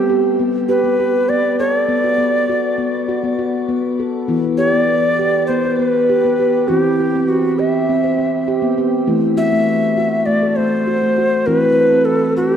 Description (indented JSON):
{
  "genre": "world meditative, meditative tuned percussion",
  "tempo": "100 BPM",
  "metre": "4/4",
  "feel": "straight",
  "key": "E minor",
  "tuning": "A4 = 440 Hz",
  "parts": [
    { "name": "Native American-style cedar flute", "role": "melody", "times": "0.0-12.6 s", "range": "F#4 to E5", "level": "-17 LUFS", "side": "equal", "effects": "shimmer reverb" },
    { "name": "handpan", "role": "arpeggios", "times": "0.0-12.6 s", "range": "E3 to C5", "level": "-16 LUFS", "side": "equal", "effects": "shimmer reverb, tape echo" }
  ],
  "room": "wet echo chamber reverb, RT60 2.2 s",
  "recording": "none",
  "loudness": "-14 LUFS",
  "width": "side -8 dB against mid",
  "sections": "0.0-4.3 A section; 4.3-12.6 B section",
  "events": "none",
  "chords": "0.0 G; 1.9 Bm; 4.3 Em; 6.7 C/E; 9.1 D9/E (rootless); 11.5 Am/E"
}